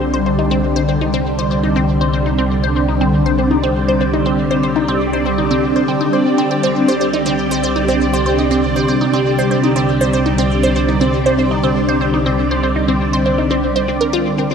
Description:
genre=ambient, sequencer-driven space music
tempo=120 BPM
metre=4/4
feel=straight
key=unclear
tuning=A4 = 440 Hz
part: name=phased string machine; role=sustained chords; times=0.0-14.5 s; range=D3 to C5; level=-16 LUFS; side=equal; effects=ensemble chorus, phaser
part: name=fat analog bass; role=bass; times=0.0-14.5 s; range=C2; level=-22 LUFS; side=equal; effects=none
part: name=bubbling stepped-filter texture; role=texture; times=0.0-14.5 s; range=D5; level=-24 LUFS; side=right 4 dB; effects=chorus, built-in reverb, shimmer reverb
part: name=resonant blip pluck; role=riff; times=0.1-14.5 s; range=C4 to C5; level=-19 LUFS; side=equal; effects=phaser, ping-pong delay, shimmer reverb
room=wet plate reverb, RT60 2.8 s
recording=none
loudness=-13 LUFS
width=side -6 dB against mid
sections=0.0-14.5 A section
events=none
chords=0.0 Csus2

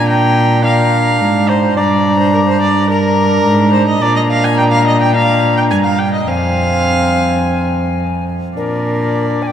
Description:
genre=classical, renaissance-style consort dance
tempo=106 BPM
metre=4/4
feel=straight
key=unclear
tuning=A4 = 441 Hz
part: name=alto recorder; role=melody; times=0.0-9.5 s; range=Bb4 to Bb5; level=-19 LUFS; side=left 4 dB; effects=none
part: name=rich viola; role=second line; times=0.0-9.5 s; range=Bb4 to Ab5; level=-17 LUFS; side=right 2 dB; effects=none
part: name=mellow bassoon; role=accompaniment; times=0.0-9.5 s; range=C4 to D4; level=-17 LUFS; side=left 1 dB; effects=none
part: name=rich cello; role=bass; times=0.0-9.5 s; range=F2 to Bb2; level=-15 LUFS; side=right 1 dB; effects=none
room=wet cathedral reverb, RT60 6.3 s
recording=in a vast, echoing space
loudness=-11 LUFS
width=side -9 dB against mid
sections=0.0-8.6 A section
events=none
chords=0.0 Bb; 1.8 Gm; 4.0 Bb; 6.3 Fm; 8.6 Bb

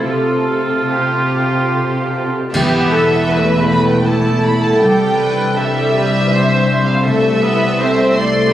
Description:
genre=cinematic, emotional film score for orchestra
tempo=72-84 BPM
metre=3/4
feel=rubato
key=unclear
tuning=A4 = 440 Hz
part: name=dark studio violin section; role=melody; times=0.0-8.5 s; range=A4 to C6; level=-21 LUFS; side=right 1 dB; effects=none
part: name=rich studio violin section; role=second line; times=0.0-8.5 s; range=G4 to E5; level=-20 LUFS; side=equal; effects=none
part: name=warm studio viola section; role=accompaniment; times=0.0-8.5 s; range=G3 to C5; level=-17 LUFS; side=equal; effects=none
part: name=concert harp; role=arpeggios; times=0.0-8.5 s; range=C3 to E5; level=-24 LUFS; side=left 6 dB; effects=none
part: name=dark studio cello section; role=bass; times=0.0-8.5 s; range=C2 to C3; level=-19 LUFS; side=right 1 dB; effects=none
part: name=cymbal swell, clash cymbals and concert bass drum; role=percussion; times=0.1-4.0 s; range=none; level=-24 LUFS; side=right 1 dB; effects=none
part: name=warm studio double bass section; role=bass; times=2.5-8.5 s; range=E1 to C2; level=-23 LUFS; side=right 2 dB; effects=none
room=moderate scoring stage reverb, RT60 1.7 s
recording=recorded on a phone in the room, club reverb, compression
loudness=-12 LUFS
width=side -12 dB against mid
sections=0.0-2.5 A section; 2.5-8.5 B section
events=band accent 2.5-3.3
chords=0.1 Fadd9/C; 2.5 Em; 4.8 Cadd9

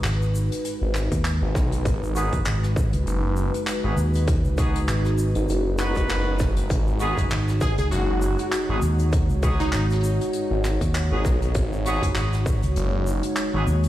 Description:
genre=glitch hop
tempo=99 BPM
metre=4/4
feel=swing 56% on 16ths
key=G# minor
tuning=A4 = 440 Hz
part: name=warbly tape-like pad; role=sustained chords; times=0.0-13.9 s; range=G#3 to C#5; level=-29 LUFS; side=equal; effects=chorus, built-in reverb, vintage 12-bit sampler grit, sidechain pumping
part: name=fingered electric bass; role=bass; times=0.0-13.9 s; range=F#1 to D#2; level=-23 LUFS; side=equal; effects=tube saturation
part: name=unplugged drum kit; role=drums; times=0.0-13.9 s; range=handclaps, hi-hat, rim click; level=-32 LUFS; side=equal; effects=none
part: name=egg shaker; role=percussion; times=0.1-13.9 s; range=none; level=-44 LUFS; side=left 2 dB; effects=none
part: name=phased detuned saw bass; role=bass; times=0.8-13.7 s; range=F#1 to B1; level=-24 LUFS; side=equal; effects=phaser, tube saturation
part: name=electronic kick drum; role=drums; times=1.1-12.6 s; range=none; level=-24 LUFS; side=equal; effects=distortion
part: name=clear horn section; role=stabs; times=2.2-13.6 s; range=B3 to B4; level=-31 LUFS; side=equal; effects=sidechain pumping, low-pass filter, digital delay
part: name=plucky unison lead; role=melody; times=7.6-9.8 s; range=D#4 to G#4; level=-30 LUFS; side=equal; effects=lush chorus, digital delay
room=small room reverb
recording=played on a big sound system in a bare room, large studio reverb, vinyl crackle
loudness=-20 LUFS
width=side -14 dB against mid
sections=0.0-13.9 A section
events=filter sweep on horn section 0.0-13.9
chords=0.0 G#m7

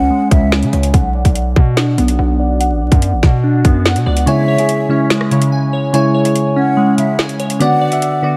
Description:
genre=hip hop, drill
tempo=144 BPM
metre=4/4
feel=half-time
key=C# phrygian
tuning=A4 = 440 Hz
part: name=breathy mellow concert flute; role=second line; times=0.0-0.5, 4.3-8.4 s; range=E5 to F#5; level=-22 LUFS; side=equal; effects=delay
part: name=glassy digital keys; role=arpeggios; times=0.0-8.4 s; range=C#3 to G#5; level=-19 LUFS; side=equal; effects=chorus, low-pass filter, delay
part: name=hard-hitting 808-style bass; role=bass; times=0.0-4.3 s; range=A1 to C#3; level=-17 LUFS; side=equal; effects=none
part: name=drill drum kit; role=drums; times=0.3-8.1 s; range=hi-hat, kick drum, rim click, snare drum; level=-17 LUFS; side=equal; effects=none
part: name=soft electric-piano-like synth keys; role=accompaniment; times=4.3-8.4 s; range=C#3 to E5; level=-17 LUFS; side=equal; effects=chorus, low-pass filter
room=light reverb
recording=vinyl crackle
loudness=-14 LUFS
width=mono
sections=0.0-8.4 A section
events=filter sweep 0.0-4.3; kick muted 4.3-8.4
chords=0.0 C#m; 0.9 Bm; 4.3 C#m; 7.6 Bm

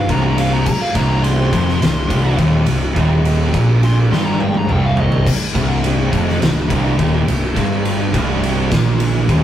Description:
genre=stoner and doom metal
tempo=104 BPM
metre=4/4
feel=straight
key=C minor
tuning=A4 = 440 Hz
part: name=fuzz lead guitar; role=melody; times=0.0-5.3 s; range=Eb5 to C6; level=-24 LUFS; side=equal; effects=distortion
part: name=overdriven electric guitar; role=riff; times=0.0-9.4 s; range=C2 to Bb2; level=-21 LUFS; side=equal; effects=none
part: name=thick fuzz guitar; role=riff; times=0.0-9.4 s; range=C2 to Bb2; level=-22 LUFS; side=left 2 dB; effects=distortion
part: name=thick fuzz guitar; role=riff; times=0.0-9.4 s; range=C2 to Bb2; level=-20 LUFS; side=right 2 dB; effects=distortion
part: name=fuzz fingered electric bass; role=bass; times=0.0-9.4 s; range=C1 to Bb1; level=-21 LUFS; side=equal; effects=overdrive
part: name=oversized low-tuned drum kit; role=drums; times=0.1-9.4 s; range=crash cymbal, kick drum, ride cymbal, snare drum, toms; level=-19 LUFS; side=equal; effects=none
room=moderate studio reverb, RT60 0.6 s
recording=rough rehearsal-room recording, warm saturation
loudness=-13 LUFS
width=side -11 dB against mid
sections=0.0-5.3 A section; 5.3-9.4 B section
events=lead electric guitar solo 0.0-5.3; drum fill 4.1-5.3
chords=0.0 Cm

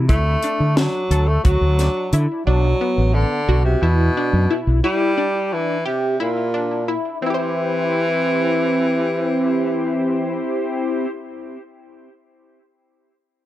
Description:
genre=progressive instrumental, band music in an uneven meter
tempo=177 BPM (eighths)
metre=7/8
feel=straight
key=C lydian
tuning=A4 = 440 Hz
part: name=tight sequenced synth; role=arpeggios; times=0.0-11.1 s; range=B3 to C5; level=-22 LUFS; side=left 1 dB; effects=chorus, phaser, analog delay
part: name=fretless electric bass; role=bass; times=0.0-4.8 s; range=A1 to D3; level=-17 LUFS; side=equal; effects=none
part: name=clear tenor saxophone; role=melody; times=0.1-10.4 s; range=Bb2 to A3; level=-21 LUFS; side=equal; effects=none
part: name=tight funk drum kit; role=drums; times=0.1-2.3 s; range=hi-hat, kick drum, snare drum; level=-19 LUFS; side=equal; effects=none
room=moderate small room reverb, RT60 0.5 s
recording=dark, warm production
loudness=-17 LUFS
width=side -13 dB against mid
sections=0.0-7.2 A section; 7.2-9.6 B section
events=none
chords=0.1 D; 2.5 Bm; 4.8 Gm6; 7.2 C

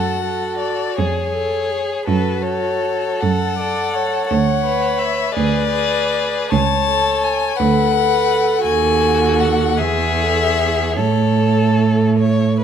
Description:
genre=classical, slow romantic movement for string quartet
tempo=49-57 BPM (dotted quarters)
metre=6/8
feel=rubato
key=A major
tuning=A4 = 440 Hz
part: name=clear violin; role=melody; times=0.0-12.2 s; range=B4 to A5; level=-20 LUFS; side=left 9 dB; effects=none
part: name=rich violin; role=second line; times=0.0-12.6 s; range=F#4 to C#5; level=-23 LUFS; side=left 1 dB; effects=none
part: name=warm viola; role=accompaniment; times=0.0-12.6 s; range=F#4 to D5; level=-22 LUFS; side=right 3 dB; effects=none
part: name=clear cello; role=bass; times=0.0-12.6 s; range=C#2 to A2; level=-19 LUFS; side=right 4 dB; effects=none
room=moderate recital hall reverb, RT60 1.7 s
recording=close, detailed microphones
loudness=-15 LUFS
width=side -8 dB against mid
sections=0.0-12.6 A section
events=none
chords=0.0 F#m; 1.0 C#/E#; 2.1 F#m; 4.3 Bm/D; 5.4 G#dim/D; 6.5 A/C#; 7.6 Bm/D; 8.7 D#dim; 9.8 E; 11.0 A

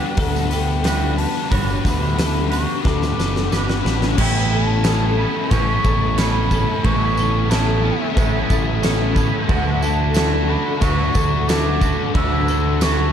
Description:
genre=rock, shoegaze and dream pop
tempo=90 BPM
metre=4/4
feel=straight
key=unclear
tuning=A4 = 440 Hz
part: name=mellow hollow concert flute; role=melody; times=0.0-13.1 s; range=E5 to E6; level=-26 LUFS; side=left 1 dB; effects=digital delay
part: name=twelve-string electric guitar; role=arpeggios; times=0.0-13.1 s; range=A4 to C#5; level=-28 LUFS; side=equal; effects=ensemble chorus, digital delay
part: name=biting overdriven guitar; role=riff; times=0.0-13.1 s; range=A2 to B4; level=-25 LUFS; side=left 13 dB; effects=analog chorus
part: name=twangy electric guitar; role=riff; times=0.0-13.1 s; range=A2 to B4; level=-26 LUFS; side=right 12 dB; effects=reverse reverb
part: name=growling picked electric bass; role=bass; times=0.2-13.1 s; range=F#1 to D2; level=-21 LUFS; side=equal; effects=overdrive
part: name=huge arena drum kit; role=drums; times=0.2-13.0 s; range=crash cymbal, hi-hat, kick drum, snare drum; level=-21 LUFS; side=equal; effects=none
part: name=tambourine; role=percussion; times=0.2-13.0 s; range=none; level=-37 LUFS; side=right 8 dB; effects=none
room=small room ambience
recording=dark, warm production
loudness=-16 LUFS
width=side -8 dB against mid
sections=0.0-4.2 A section; 4.2-13.1 B section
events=drum fill 2.8-4.2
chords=0.0 Gmaj7; 4.2 Aadd9; 9.5 Dadd9

